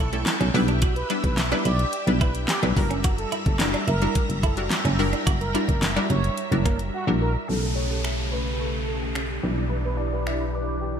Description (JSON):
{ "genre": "dance-pop", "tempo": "108 BPM", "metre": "4/4", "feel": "straight", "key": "unclear", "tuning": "A4 = 440 Hz", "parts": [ { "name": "expressive synth lead", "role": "melody", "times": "0.0-10.9 s", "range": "F#4 to D5", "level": "-32 LUFS", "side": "right 3 dB", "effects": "chorus, sidechain pumping, low-pass filter, ping-pong delay" }, { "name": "string machine, full ensemble", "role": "sustained chords", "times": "0.0-11.0 s", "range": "C#3 to C#6", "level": "-31 LUFS", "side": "equal", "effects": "ensemble chorus, sidechain pumping, low-pass filter" }, { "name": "twelve-string electric guitar", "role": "riff", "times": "0.0-6.8 s", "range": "A#3 to F#4", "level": "-32 LUFS", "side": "right 7 dB", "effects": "analog chorus" }, { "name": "solid FM bass", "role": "bass", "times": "0.0-11.0 s", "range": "F#1 to B1", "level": "-25 LUFS", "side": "equal", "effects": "sidechain pumping" }, { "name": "punchy chord stab", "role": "accompaniment", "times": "0.1-11.0 s", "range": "G3 to B4", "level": "-28 LUFS", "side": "left 1 dB", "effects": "chorus, sidechain pumping, low-pass filter" }, { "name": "smooth R&B drum kit", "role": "drums", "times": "0.1-10.4 s", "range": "finger snaps, handclaps, hi-hat, kick drum, snare drum", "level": "-25 LUFS", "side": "equal", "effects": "gated reverb" }, { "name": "warm grand piano", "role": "melody", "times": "7.5-11.0 s", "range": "G4 to D5", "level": "-35 LUFS", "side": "left 3 dB", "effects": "analog chorus, low-pass filter" }, { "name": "soft round pluck", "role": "arpeggios", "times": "7.5-11.0 s", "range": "E3 to G6", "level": "-39 LUFS", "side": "right 3 dB", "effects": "none" }, { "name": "downlifter", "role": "sound effects", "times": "7.5-11.0 s", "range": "none", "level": "-34 LUFS", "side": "equal", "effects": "none" } ], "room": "light reverb", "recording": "bright 1980s-style digital production", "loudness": "-21 LUFS", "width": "side -8 dB against mid", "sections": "0.0-7.5 A section; 7.5-11.0 B section", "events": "drop 0.0-7.5; silent gap 6.9-7.5; filter sweep 7.5-11.0", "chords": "0.0 A7/B; 0.5 Em7/B; 2.8 F#7b9b13; 7.5 A7/B; 9.4 Em7/B", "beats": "0.27 | 0.82 1.38 1.93 2.49 | 3.04 3.60 4.16 4.71 | 5.27 5.82 6.38 6.93 | 7.49 8.04 8.60 9.16 | 9.71 10.27 10.82" }